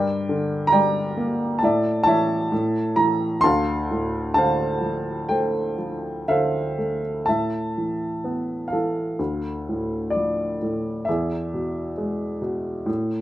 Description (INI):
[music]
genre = classical, lyrical solo piano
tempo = 59-68 BPM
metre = 4/4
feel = rubato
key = D minor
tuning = A4 = 445 Hz
[part]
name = warm upright piano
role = solo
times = 0.0-13.2 s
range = D2 to C6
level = -21 LUFS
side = equal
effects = none
[sound]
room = moderate small room reverb, RT60 0.5 s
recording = minimal, uncompressed stereo recording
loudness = -21 LUFS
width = side -14 dB against mid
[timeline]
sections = 0.0-7.3 A section; 7.3-13.2 B section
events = none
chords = 0.0 Gm; 1.6 Asus4; 2.5 A; 3.4 Dm7; 7.3 Asus2; 9.2 Dm; 11.1 E